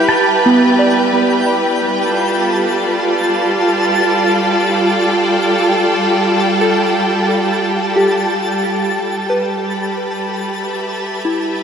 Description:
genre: ambient.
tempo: 67 BPM.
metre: 4/4.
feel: straight.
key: G mixolydian.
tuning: A4 = 439 Hz.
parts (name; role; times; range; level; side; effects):
pedal steel guitar; melody; 0.0-0.9 s; A5; -22 LUFS; right 3 dB; tape echo.
bright studio string section; sustained chords; 0.0-11.6 s; G3 to B5; -15 LUFS; right 1 dB; none.
soft synth bell; arpeggios; 0.0-11.6 s; B3 to E5; -19 LUFS; equal; chorus, tape echo.
twinkling granular texture; texture; 0.0-11.6 s; G5 to A5; -21 LUFS; equal; built-in reverb.
room: wet shimmer reverb, RT60 8.0 s.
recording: none.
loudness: -13 LUFS.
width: side -7 dB against mid.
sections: 0.0-11.6 A section.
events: fade-out 6.7-11.6.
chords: 0.0 Em/G; 1.9 Gsus2; 9.0 Em/G.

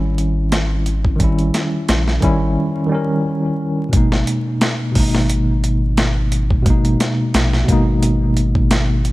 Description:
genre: trip hop.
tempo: 88 BPM.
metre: 4/4.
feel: swing 55% on 16ths.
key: G# harmonic minor.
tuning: A4 = 440 Hz.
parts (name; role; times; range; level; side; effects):
mellow tine electric piano; accompaniment; 0.0-9.1 s; B2 to A#4; -18 LUFS; equal; medium stereo tremolo, vintage 12-bit sampler grit, tape echo.
soft dub sub bass; bass; 0.0-9.1 s; G#1 to A#1; -18 LUFS; equal; none.
dusty soul sampler-style drum kit; drums; 0.2-9.1 s; hi-hat, kick drum, snare drum; -18 LUFS; equal; overdrive.
room: little or no reverb.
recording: vinyl crackle.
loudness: -14 LUFS.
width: side -19 dB against mid.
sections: 0.0-3.9 A section; 3.9-9.1 B section.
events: filter sweep on tine electric piano 0.0-3.9; break 2.6-3.9.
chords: 0.0 D#7b9/G#; 3.9 G#madd9.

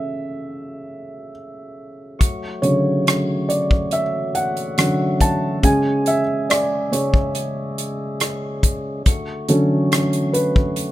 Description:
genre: pop ballad.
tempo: 70 BPM.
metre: 4/4.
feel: straight.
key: unclear.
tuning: A4 = 440 Hz.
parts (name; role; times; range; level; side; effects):
felt-muted upright piano; accompaniment; 0.0-10.9 s; C#3 to A5; -20 LUFS; right 1 dB; none.
percussive tonewheel organ; sustained chords; 2.2-10.9 s; C#3 to G#4; -29 LUFS; left 2 dB; overdrive, stopped rotary speaker.
natural country drum kit; drums; 2.2-10.9 s; hi-hat, kick drum, rim click; -19 LUFS; equal; none.
room: small room ambience.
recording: rough home demo mix.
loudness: -17 LUFS.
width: side -15 dB against mid.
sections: 0.0-10.9 A section.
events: felt piano solo 0.0-10.9.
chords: 0.0 Amaj7/C#; 2.2 Dmaj7; 5.6 C#m; 9.1 Dmaj7.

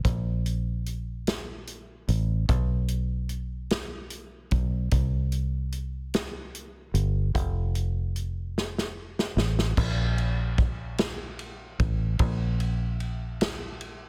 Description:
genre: slow gospel.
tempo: 49 BPM (dotted quarters).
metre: 6/8.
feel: straight.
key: unclear.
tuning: A4 = 440 Hz.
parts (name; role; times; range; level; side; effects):
fingered electric bass; bass; 0.0-14.1 s; F1 to C2; -30 LUFS; equal; none.
natural country drum kit; drums; 0.0-14.0 s; crash cymbal, hi-hat, kick drum, ride cymbal, snare drum; -31 LUFS; equal; none.
room: little or no reverb.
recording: dense, heavily limited modern master.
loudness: -28 LUFS.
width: mono.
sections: 0.0-9.8 A section; 9.8-14.1 B section.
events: drum fill 8.6-9.8.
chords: none.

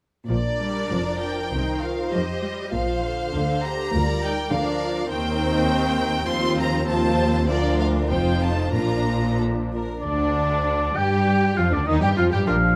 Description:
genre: quick classical-period movement for symphony orchestra.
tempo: 92-103 BPM.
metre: 2/4.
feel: rubato.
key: Bb major.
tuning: A4 = 440 Hz.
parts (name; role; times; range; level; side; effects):
clear chamber violin section; melody; 0.3-12.6 s; D4 to C6; -31 LUFS; equal; none.
rich chamber violin section; second line; 0.3-12.5 s; D4 to D5; -32 LUFS; equal; none.
dark chamber viola section; accompaniment; 0.3-12.5 s; D3 to G4; -30 LUFS; equal; none.
rich chamber cello section; bass; 0.3-12.8 s; D2 to G3; -29 LUFS; equal; none.
warm symphonic double bass section; bass; 0.3-12.8 s; F1 to G2; -29 LUFS; equal; none.
clear oboe; second line; 10.0-12.8 s; D5 to G5; -26 LUFS; equal; none.
mellow French horn section; sustained chords; 10.0-12.8 s; D3 to D4; -30 LUFS; equal; none.
room: moderate recital hall reverb, RT60 1.7 s.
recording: close, detailed microphones.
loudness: -23 LUFS.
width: mono.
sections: 0.3-10.0 A section; 10.0-12.8 A section.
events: none.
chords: 0.3 Bb; 1.5 F5/C; 2.7 Bb; 3.9 Bb/D; 5.1 Cm7/Eb; 6.3 F7/Eb; 7.5 Bb/D; 8.1 F7; 8.7 Bb; 10.0 Dsus4; 11.3 Ebmaj9.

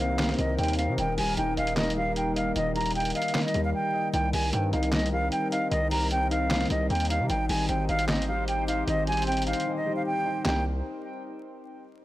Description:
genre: hip hop, trap.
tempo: 152 BPM.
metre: 4/4.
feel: half-time.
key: C minor.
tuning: A4 = 443 Hz.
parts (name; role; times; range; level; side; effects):
concert flute; melody; 0.0-10.6 s; Eb5 to Bb5; -29 LUFS; right 1 dB; none.
felt-muted upright piano; accompaniment; 0.0-10.6 s; C3 to Eb5; -32 LUFS; left 2 dB; none.
warbly tape-like pad; sustained chords; 0.0-10.6 s; G3 to C5; -33 LUFS; equal; chorus, built-in reverb.
distorted 808-style bass; bass; 0.0-10.8 s; Eb1 to C3; -30 LUFS; equal; distortion.
lo-fi sampler-style drum kit; drums; 0.0-10.5 s; handclaps, hi-hat, snare drum; -31 LUFS; equal; overdrive.
downlifter; sound effects; 0.0-1.0 s; none; barely audible; none; none.
room: little or no reverb.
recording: dry, gritty hardware recording, vinyl crackle.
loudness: -24 LUFS.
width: side -16 dB against mid.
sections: 0.0-10.5 A section; 10.5-12.0 B section.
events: silent gap 3.7-4.1; drums muted 9.7-10.5.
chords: 0.0 Cm7; 1.0 Eb; 4.1 Cm7; 7.3 Abmaj7; 10.5 Cm7.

